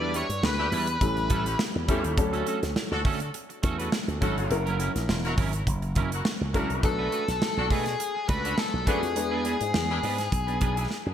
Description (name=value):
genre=polished 1980s jazz-funk pop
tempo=103 BPM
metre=4/4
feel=swing 54% on 16ths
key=unclear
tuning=A4 = 438 Hz
part: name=octave-fuzz lead guitar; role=melody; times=0.0-1.6, 6.9-10.9 s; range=G#4 to D5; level=-30 LUFS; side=left 4 dB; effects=distortion, digital delay
part: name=dark baby grand piano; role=accompaniment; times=0.0-11.1 s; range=F#3 to B4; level=-32 LUFS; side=left 2 dB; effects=lush chorus
part: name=clean electric guitar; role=riff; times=0.0-11.1 s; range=F#3 to C#5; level=-34 LUFS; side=right 6 dB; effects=analog chorus
part: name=slap bass with an envelope filter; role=bass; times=0.0-11.1 s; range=E1 to D3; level=-30 LUFS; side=equal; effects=none
part: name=modern studio drum kit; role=drums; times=0.1-11.1 s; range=hi-hat, kick drum, snare drum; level=-29 LUFS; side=right 1 dB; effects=gated reverb
part: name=warm horn section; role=second line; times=0.6-10.9 s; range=B3 to A#4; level=-36 LUFS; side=left 1 dB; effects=digital delay
room=light reverb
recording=bright 1980s-style digital production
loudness=-24 LUFS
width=side -9 dB against mid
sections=0.0-11.1 A section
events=drum fill 10.9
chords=0.0 Em7; 1.0 A7; 2.2 Dmaj7; 4.5 F#7; 6.8 Bm7; 9.2 E7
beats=0.43 1.01 1.60 | 2.18 2.76 3.34 3.92 | 4.51 5.09 5.67 6.25 | 6.83 7.42 8.00 8.58 | 9.16 9.74 10.32 10.90